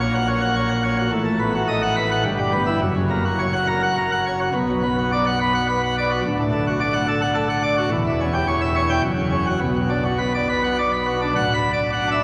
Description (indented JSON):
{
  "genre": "classical, organ toccata",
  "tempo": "106 BPM",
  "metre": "3/4",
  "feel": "straight",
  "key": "B minor",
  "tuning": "A4 = 440 Hz",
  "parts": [
    { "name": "pipe organ, plenum", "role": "solo", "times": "0.0-12.2 s", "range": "D1 to B5", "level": "-21 LUFS", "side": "equal", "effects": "none" }
  ],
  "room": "wet cathedral reverb, RT60 5.2 s",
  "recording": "none",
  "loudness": "-21 LUFS",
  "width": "mono",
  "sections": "0.0-11.4 A section",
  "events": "none",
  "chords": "0.0 F#/A#; 1.1 B7/A; 2.2 Em/G; 2.8 F#; 4.5 Bm; 6.2 D; 7.9 C#dim/E; 9.0 F#5; 9.6 Bm; 11.4 Bm/D"
}